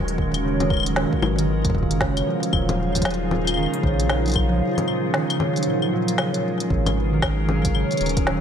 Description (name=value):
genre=IDM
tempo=115 BPM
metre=4/4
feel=swing 62% on 16ths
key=unclear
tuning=A4 = 441 Hz
part: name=glassy FM pad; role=sustained chords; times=0.0-8.4 s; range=F#3 to A#4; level=-26 LUFS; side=equal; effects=ensemble chorus, built-in reverb
part: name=concert harp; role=arpeggios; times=0.0-8.4 s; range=A#2 to A#3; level=-24 LUFS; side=right 1 dB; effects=tape echo
part: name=round analog bass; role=bass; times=0.0-8.4 s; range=D#1 to A#1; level=-25 LUFS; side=equal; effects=none
part: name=electronic kick drum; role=drums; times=0.0-8.2 s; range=none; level=-24 LUFS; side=equal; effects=none
part: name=organic electronic drum kit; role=drums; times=0.1-8.4 s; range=claves, congas, hi-hat, snare drum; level=-26 LUFS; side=left 2 dB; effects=none
room=light reverb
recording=none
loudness=-19 LUFS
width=side -8 dB against mid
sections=0.0-6.7 A section; 6.7-8.4 A section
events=none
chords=0.0 G#m11; 2.3 D#m11; 6.7 G#m11